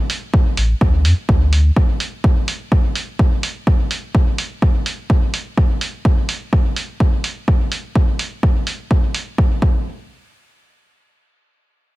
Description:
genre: dub techno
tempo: 126 BPM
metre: 4/4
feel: straight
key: D minor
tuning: A4 = 443 Hz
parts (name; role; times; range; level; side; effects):
- electronic hi-hat; drums; 0.1-9.2 s; none; -26 LUFS; right 2 dB; none
- electronic kick drum; drums; 0.3-9.8 s; none; -15 LUFS; equal; overdrive
- pure sine sub bass; bass; 0.6-1.7 s; A1 to F2; -14 LUFS; equal; sidechain pumping
room: little or no reverb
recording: none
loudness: -15 LUFS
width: side -19 dB against mid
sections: 0.0-9.4 A section; 9.4-12.0 B section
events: none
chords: none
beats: 0.34 0.81 1.29 | 1.76 2.24 2.72 3.19 | 3.67 4.14 4.62 5.10 | 5.57 6.05 6.53 7.00 | 7.48 7.95 8.43 8.91 | 9.38

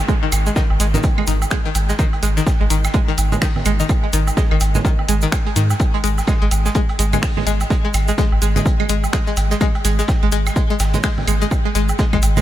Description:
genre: minimal techno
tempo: 126 BPM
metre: 4/4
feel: swing 60% on 16ths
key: unclear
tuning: A4 = 440 Hz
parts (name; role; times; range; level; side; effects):
- downlifter; sound effects; 0.0-2.0 s; none; -37 LUFS; equal; none
- string-like resonator pluck; riff; 0.1-12.4 s; D#3 to G#3; -22 LUFS; left 1 dB; chorus, sidechain pumping, diffuse ambient delay
- cloth-damped thuddy drum kit; drums; 0.1-12.4 s; hi-hat, snare drum; -36 LUFS; left 3 dB; none
- electronic kick drum; drums; 0.1-12.2 s; none; -18 LUFS; equal; none
- cabasa; percussion; 0.1-12.4 s; none; -29 LUFS; right 5 dB; none
- round analog bass; bass; 0.3-12.4 s; G#1 to G#2; -18 LUFS; equal; sidechain pumping
- punchy analog drum machine; drums; 0.3-12.3 s; finger snaps, hi-hat; -29 LUFS; left 1 dB; none
- woodblock and congas; percussion; 0.3-12.4 s; none; -27 LUFS; right 4 dB; tape echo
room: light reverb, studio ambience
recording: none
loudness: -15 LUFS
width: side -13 dB against mid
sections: 0.0-12.4 A section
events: none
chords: 0.0 G#5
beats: | 0.09 0.56 1.04 1.51 | 1.99 2.47 2.94 3.42 | 3.89 4.37 4.85 5.32 | 5.80 6.28 6.75 7.23 | 7.70 8.18 8.66 9.13 | 9.61 10.09 10.56 11.04 | 11.51 11.99

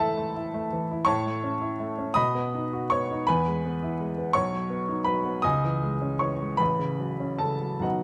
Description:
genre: classical, romantic character piece for solo piano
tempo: 45-57 BPM (dotted quarters)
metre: 6/8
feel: rubato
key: unclear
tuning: A4 = 440 Hz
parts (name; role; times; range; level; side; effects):
- clear grand piano; solo; 0.0-8.0 s; A1 to D#6; -27 LUFS; equal; none
room: moderate recital hall reverb, RT60 1.5 s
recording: close, detailed microphones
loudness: -27 LUFS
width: mono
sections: 0.0-8.0 A section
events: none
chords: 0.0 Am; 1.1 A; 2.2 B; 3.3 E; 4.3 B; 5.4 C#m; 6.6 F#m/A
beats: | 1.07 2.15 | 3.27 4.34 | 5.45 6.60 | 7.84

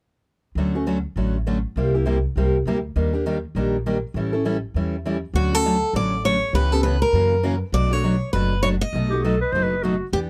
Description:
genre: acoustic string swing (jazz manouche)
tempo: 201 BPM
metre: 4/4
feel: swing 60% on 8ths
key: D major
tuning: A4 = 441 Hz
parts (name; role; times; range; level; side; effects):
- picked steel-string acoustic guitar; accompaniment; 0.6-10.3 s; B2 to A4; -26 LUFS; equal; none
- upright bass; bass; 0.6-10.3 s; F#1 to F#2; -26 LUFS; equal; none
- picked steel-string acoustic guitar; melody; 5.4-10.2 s; F#4 to Eb5; -25 LUFS; equal; none
- breathy clarinet; second line; 9.1-10.1 s; F#4 to C5; -26 LUFS; equal; none
room: little or no reverb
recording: close, detailed microphones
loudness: -22 LUFS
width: mono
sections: 0.6-5.3 A section; 5.3-10.3 B section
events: none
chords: 0.6 Dmaj7; 1.8 C7; 3.0 Ebmaj7; 4.2 A7; 5.3 Dmaj7; 6.5 C#m7b5; 7.1 F#7; 7.7 Bm9; 8.9 B7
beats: | 0.56 0.86 1.16 1.46 | 1.76 2.06 2.36 2.66 | 2.96 3.25 3.55 3.85 | 4.15 4.45 4.75 5.05 | 5.35 5.65 5.95 6.24 | 6.54 6.84 7.14 7.44 | 7.74 8.04 8.34 8.63 | 8.93 9.23 9.53 9.83 | 10.13

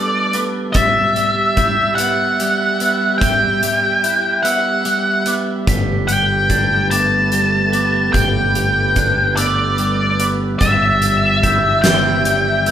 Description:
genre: post-rock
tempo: 49 BPM (dotted quarters)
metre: 6/8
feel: straight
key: G major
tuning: A4 = 441 Hz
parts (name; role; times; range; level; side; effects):
- octave-fuzz lead guitar; melody; 0.0-12.7 s; D5 to A5; -16 LUFS; equal; distortion
- dark studio string section; sustained chords; 0.0-12.7 s; G3 to E5; -24 LUFS; right 1 dB; none
- glockenspiel with soft plastic mallets; arpeggios; 0.0-12.7 s; D6 to B6; -26 LUFS; right 2 dB; none
- twelve-string electric guitar; arpeggios; 0.0-12.7 s; G3 to E4; -23 LUFS; equal; none
- huge arena drum kit; drums; 0.3-12.7 s; hi-hat, kick drum, snare drum; -21 LUFS; equal; none
- growling fingered electric bass; bass; 5.7-12.7 s; G1; -20 LUFS; equal; overdrive
room: wet large studio reverb, RT60 1.2 s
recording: band playing live in one room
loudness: -13 LUFS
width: side -10 dB against mid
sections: 0.0-12.7 A section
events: none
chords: 0.0 Gadd9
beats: | 0.75 1.99 | 3.22 4.45 | 5.69 6.92 | 8.15 9.38 | 10.62 11.85

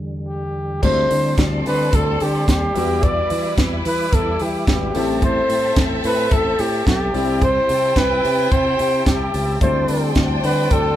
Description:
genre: disco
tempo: 109 BPM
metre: 4/4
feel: straight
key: unclear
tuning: A4 = 444 Hz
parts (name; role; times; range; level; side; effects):
- mellow tonewheel organ; sustained chords; 0.0-11.0 s; E2 to D6; -29 LUFS; equal; chorus vibrato, slow rotary speaker
- breathy flugelhorn; melody; 0.3-11.0 s; G4 to D5; -20 LUFS; equal; none
- rich studio violin section; second line; 0.8-11.0 s; G3 to G5; -26 LUFS; left 1 dB; none
- clear concert grand piano; accompaniment; 0.8-11.0 s; G3 to F#4; -27 LUFS; left 4 dB; none
- fingered electric bass; bass; 0.8-10.9 s; G#1 to E3; -23 LUFS; equal; none
- tight funk drum kit; drums; 0.8-10.8 s; crash cymbal, hi-hat, kick drum, snare drum; -21 LUFS; equal; none
room: moderate large studio reverb, RT60 1.3 s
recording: band playing live in one room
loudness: -16 LUFS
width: side -12 dB against mid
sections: 0.8-11.0 A section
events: break 0.0-0.8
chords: 0.0 Em7; 0.8 D7sus4; 2.8 Em7; 4.9 Am7; 7.1 Cmaj7; 9.6 D7sus4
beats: 0.28 | 0.83 1.38 1.93 2.48 | 3.03 3.58 4.12 4.67 | 5.22 5.77 6.32 6.87 | 7.42 7.96 8.51 9.06 | 9.61 10.16 10.71

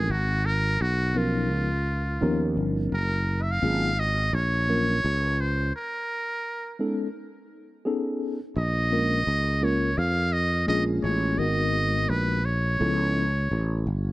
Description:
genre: hip hop, jazz-hop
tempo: 85 BPM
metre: 4/4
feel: swing 61% on 16ths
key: unclear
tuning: A4 = 440 Hz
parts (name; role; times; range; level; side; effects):
- trumpet with metal mute; melody; 0.0-13.9 s; F4 to F5; -27 LUFS; right 1 dB; none
- mellow tine electric piano; accompaniment; 0.0-13.2 s; F3 to Bb4; -28 LUFS; left 1 dB; medium stereo tremolo
- sustaining fretless electric bass; bass; 0.0-14.1 s; Gb1 to F2; -26 LUFS; equal; none
room: small room reverb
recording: none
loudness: -23 LUFS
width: side -18 dB against mid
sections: 0.0-14.1 A section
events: break 5.7-8.6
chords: 0.1 Abmadd9; 1.5 Db13; 2.9 Gbmaj9; 5.7 Abmadd9; 7.2 B13; 8.6 Bbm7; 11.4 Abm9; 12.8 Db7alt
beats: | 0.09 0.80 1.50 2.21 | 2.92 3.62 4.33 5.04 | 5.74 6.45 7.15 7.86 | 8.56 9.27 9.98 10.68 | 11.39 12.09 12.80 13.51

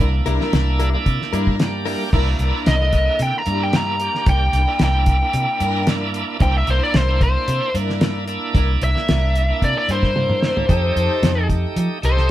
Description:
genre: straight-eighth soul blues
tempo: 112 BPM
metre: 4/4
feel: straight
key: C mixolydian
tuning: A4 = 441 Hz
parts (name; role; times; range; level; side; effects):
- bright tonewheel organ; accompaniment; 0.0-12.3 s; D3 to G4; -26 LUFS; right 4 dB; slow rotary speaker, overdrive
- warm studio string section; sustained chords; 0.0-12.3 s; D4 to C5; -30 LUFS; left 3 dB; none
- vintage muted fingered electric bass; bass; 0.0-12.3 s; C2 to F3; -20 LUFS; equal; none
- direct-recorded clean electric guitar; stabs; 0.3-2.0 s; G3 to Bb4; -28 LUFS; left 4 dB; spring reverb
- cloth-damped thuddy drum kit; drums; 0.3-12.2 s; crash cymbal, hi-hat, kick drum, snare drum, toms; -20 LUFS; equal; none
- biting lead guitar; melody; 2.7-12.3 s; C5 to Bb5; -21 LUFS; left 1 dB; overdrive
room: light reverb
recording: band playing live in one room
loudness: -16 LUFS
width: side -14 dB against mid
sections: 0.0-2.1 A section; 2.1-12.3 B section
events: lead electric guitar solo 2.1-12.3; drum fill 10.2-10.7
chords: 0.0 C9; 10.7 F9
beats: 0.52 1.06 1.59 | 2.13 2.66 3.20 3.73 | 4.27 4.80 5.34 5.87 | 6.41 6.94 7.48 8.02 | 8.55 9.09 9.62 10.16 | 10.70 11.23 11.77 12.30

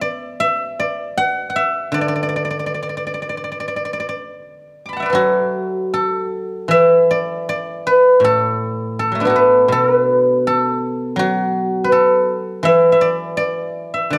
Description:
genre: chinese traditional, Chinese solo plucked strings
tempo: 70-83 BPM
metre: 4/4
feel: rubato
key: D gong mode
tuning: A4 = 445 Hz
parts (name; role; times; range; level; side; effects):
- guzheng; solo; 0.0-14.2 s; A2 to D6; -17 LUFS; equal; none
room: moderate recital hall reverb, RT60 1.6 s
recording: dark, warm production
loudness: -17 LUFS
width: mono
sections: 0.0-5.1 A section; 5.1-14.2 B section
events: none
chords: none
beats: 0.41 1.17 | 1.93 2.69 3.48 4.30 | 5.13 5.91 6.69 7.46 | 8.21 8.96 9.70 10.44 | 11.18 11.91 12.64 13.38 | 14.12

